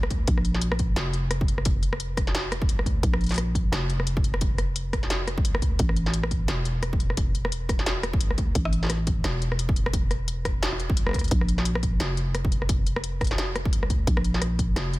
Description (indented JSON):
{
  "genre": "half-time drum and bass",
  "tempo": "174 BPM",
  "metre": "4/4",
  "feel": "swing 58% on 16ths, half-time",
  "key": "unclear",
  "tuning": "A4 = 442 Hz",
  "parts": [
    { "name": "growling 808-style bass", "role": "bass", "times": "0.0-15.0 s", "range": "E1 to D2", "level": "-27 LUFS", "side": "equal", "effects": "none" },
    { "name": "industrial drum kit", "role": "drums", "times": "0.0-15.0 s", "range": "hi-hat, rim click, snare drum", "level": "-30 LUFS", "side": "equal", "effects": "small room ambience" },
    { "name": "electronic kick drum", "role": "drums", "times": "0.1-14.7 s", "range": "none", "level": "-25 LUFS", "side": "equal", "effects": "small room ambience" }
  ],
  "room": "little or no reverb",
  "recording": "dense, heavily limited modern master",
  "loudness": "-23 LUFS",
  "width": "side -19 dB against mid",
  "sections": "0.0-15.0 A section",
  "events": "none",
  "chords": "none"
}